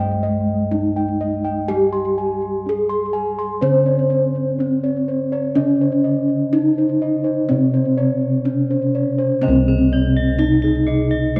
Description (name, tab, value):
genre	Javanese gamelan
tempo	62 BPM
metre	4/4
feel	straight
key	C pelog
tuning	A4 = 441 Hz
part	gamelan-type bronze metallophone	melody	0.0-11.4 s	Ab3 to C5	-21 LUFS	equal	tape echo
part	gamelan-type bronze metallophone	accompaniment	0.0-11.4 s	C3 to C4	-27 LUFS	equal	none
part	gamelan-type bossed gongs	arpeggios	0.0-11.4 s	Ab4 to C6	-28 LUFS	equal	none
part	gamelan-type bossed gongs	bass	0.0-11.4 s	C2 to Ab4	-26 LUFS	equal	none
part	gamelan-type bronze metallophone	arpeggios	9.4-11.4 s	Ab4 to Eb5	-30 LUFS	equal	none
room	wet echo chamber reverb, RT60 2.3 s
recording	none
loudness	-18 LUFS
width	mono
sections	0.0-9.4 A section; 9.4-11.4 A section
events	none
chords	none